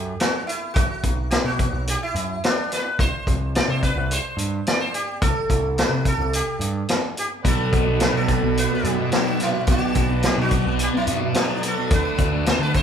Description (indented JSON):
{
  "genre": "psychedelic rock",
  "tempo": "108 BPM",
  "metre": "4/4",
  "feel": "straight",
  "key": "unclear",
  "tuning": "A4 = 444 Hz",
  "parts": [
    { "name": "sitar", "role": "melody", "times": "0.0-12.8 s", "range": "D4 to D5", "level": "-26 LUFS", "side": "right 1 dB", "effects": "none" },
    { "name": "growling picked electric bass", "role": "bass", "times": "0.0-12.8 s", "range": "B1 to D3", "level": "-26 LUFS", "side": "right 1 dB", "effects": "overdrive" },
    { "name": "vintage drum kit", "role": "drums", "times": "0.2-12.8 s", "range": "hi-hat, kick drum, snare drum", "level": "-22 LUFS", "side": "equal", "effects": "none" },
    { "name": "combo organ", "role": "sustained chords", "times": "7.4-12.8 s", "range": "A4 to B5", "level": "-32 LUFS", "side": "right 2 dB", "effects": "none" },
    { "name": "thick fuzz guitar", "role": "riff", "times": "7.4-12.8 s", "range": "B2 to D4", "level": "-23 LUFS", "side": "equal", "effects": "distortion, phaser" }
  ],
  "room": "moderate large studio reverb, RT60 1.2 s",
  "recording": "band playing live in one room",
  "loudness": "-19 LUFS",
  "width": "side -8 dB against mid",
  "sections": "0.0-12.8 A section",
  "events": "none",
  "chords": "0.0 B5; 3.0 C5; 7.4 Bm; 11.9 D"
}